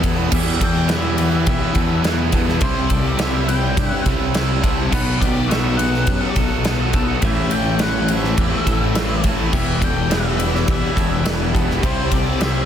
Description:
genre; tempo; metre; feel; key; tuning
rock, shoegaze and dream pop; 104 BPM; 4/4; straight; E minor; A4 = 442 Hz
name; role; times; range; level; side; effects
string machine, violins; sustained chords; 0.0-0.3, 9.5-12.7 s; G4 to E6; -31 LUFS; left 1 dB; phaser, ensemble chorus
twelve-string electric guitar; arpeggios; 0.0-12.7 s; F#4 to C5; -32 LUFS; left 9 dB; lush chorus, tape echo
biting overdriven guitar; riff; 0.0-12.7 s; A2 to A4; -26 LUFS; right 11 dB; reverse reverb
thick fuzz guitar; riff; 0.0-12.7 s; E2 to C4; -24 LUFS; left 9 dB; distortion, analog chorus
tight distorted guitar; riff; 0.0-12.7 s; E2 to C4; -27 LUFS; right 2 dB; distortion
fuzz fingered electric bass; bass; 0.0-12.7 s; E1 to G2; -22 LUFS; equal; overdrive
big rock drum kit; drums; 0.0-12.5 s; crash cymbal, kick drum, ride cymbal, snare drum; -20 LUFS; equal; none
octave-fuzz lead guitar; melody; 0.3-12.7 s; B4 to G5; -28 LUFS; left 2 dB; distortion, tape echo
room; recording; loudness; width
studio reverb; dense, heavily limited modern master; -16 LUFS; side -9 dB against mid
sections
0.3-12.7 A section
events
none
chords
0.3 Em; 2.6 Cmaj7; 4.9 B5; 7.2 Am7; 9.5 Em7; 11.8 Cmaj7

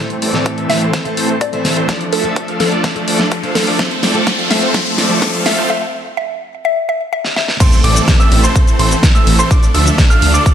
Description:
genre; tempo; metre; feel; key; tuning
EDM, festival progressive house; 126 BPM; 4/4; straight; A minor; A4 = 439 Hz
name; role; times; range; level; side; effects
picked plugged-in steel-string acoustic guitar; accompaniment; 0.0-5.7 s; A2 to C5; -22 LUFS; left 1 dB; sidechain pumping, digital delay
lush unison pad; sustained chords; 0.1-10.5 s; E3 to A4; -28 LUFS; equal; none
supersaw chords; riff; 0.0-10.5 s; E3 to F5; -17 LUFS; right 1 dB; sidechain pumping, low-pass filter, digital delay
riser and impact; sound effects; 2.1-9.5 s; none; -23 LUFS; equal; none
big-room dance drum kit; drums; 0.1-10.5 s; crash cymbal, hi-hat, ride cymbal, shaker, snare drum; -18 LUFS; equal; none
detuned saw bass; bass; 0.2-10.4 s; F1 to D2; -17 LUFS; equal; sidechain pumping, high-pass filter
electronic kick drum; drums; 0.5-10.5 s; none; -12 LUFS; equal; high-pass filter on kick
mallet-like synth pluck; melody; 0.7-7.6 s; A4 to E5; -20 LUFS; left 2 dB; chorus, phaser, digital delay
bright grand piano; arpeggios; 7.6-10.5 s; C6 to F6; -19 LUFS; right 3 dB; sidechain pumping, digital delay
room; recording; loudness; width
moderate recital hall reverb, RT60 1.4 s, digital ambience; high-pass filter; -11 LUFS; side -9 dB against mid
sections
0.0-7.6 A section; 7.6-10.5 B section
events
build-up 0.0-7.6; drum fill 0.0-5.7, 7.2-7.6; filter sweep on supersaw synth 0.0-7.6; riser 2.1-5.7; break 5.7-7.6; drop 7.6-10.5; impact 7.6-9.5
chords
0.0 Am; 1.9 Dm; 3.8 F; 5.7 N.C.; 7.6 Am; 9.5 Dm

